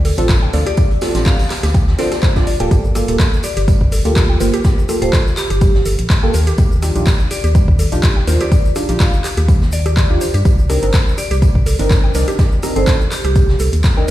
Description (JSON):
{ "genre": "deep house", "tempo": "124 BPM", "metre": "4/4", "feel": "swing 54% on 16ths", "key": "unclear", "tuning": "A4 = 440 Hz", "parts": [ { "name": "organ-like FM bass", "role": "bass", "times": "0.0-14.1 s", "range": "D1 to G2", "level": "-16 LUFS", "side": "equal", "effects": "none" }, { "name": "deep house drum kit", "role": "drums", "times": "0.0-14.1 s", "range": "handclaps, hi-hat, rim click", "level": "-24 LUFS", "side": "equal", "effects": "overdrive, small room ambience" }, { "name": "mallet-like synth pluck", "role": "arpeggios", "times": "0.1-14.1 s", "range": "G3 to G5", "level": "-26 LUFS", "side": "right 2 dB", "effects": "chorus, sidechain pumping, ping-pong delay" }, { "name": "vintage brush drum kit", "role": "drums", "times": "0.1-14.1 s", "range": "hi-hat, snare drum, tambourine", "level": "-31 LUFS", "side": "right 1 dB", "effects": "high-pass filter on hats, small room ambience, high-pass filter on snare, high-pass filter on perc, high-pass filter on room" }, { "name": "deep mellow chord stab", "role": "stabs", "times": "0.2-14.1 s", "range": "Bb3 to D5", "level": "-21 LUFS", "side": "right 1 dB", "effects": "chorus, sidechain pumping, ping-pong delay" }, { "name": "electronic kick drum", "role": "drums", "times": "0.3-13.9 s", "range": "none", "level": "-13 LUFS", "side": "equal", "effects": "overdrive, small room ambience" }, { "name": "vibraphone with hard mallets", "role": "melody", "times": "0.7-13.5 s", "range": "G4 to F5", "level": "-25 LUFS", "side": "equal", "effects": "ping-pong delay" }, { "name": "tube shaker", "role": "percussion", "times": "2.7-14.1 s", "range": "none", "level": "-34 LUFS", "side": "left 3 dB", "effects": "none" } ], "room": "light reverb, small room ambience", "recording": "played on a big sound system in a bare room, stone room reverb", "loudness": "-12 LUFS", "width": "side -14 dB against mid", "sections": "0.0-14.1 A section", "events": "none", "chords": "0.0 Dm7; 6.3 Ebmaj9; 10.5 Cm9", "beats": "0.29 | 0.78 1.26 1.74 2.23 | 2.71 3.20 3.68 4.16 | 4.65 5.13 5.62 6.10 | 6.58 7.07 7.55 8.03 | 8.52 9.00 9.49 9.97 | 10.45 10.94 11.42 11.90 | 12.39 12.87 13.36 13.84" }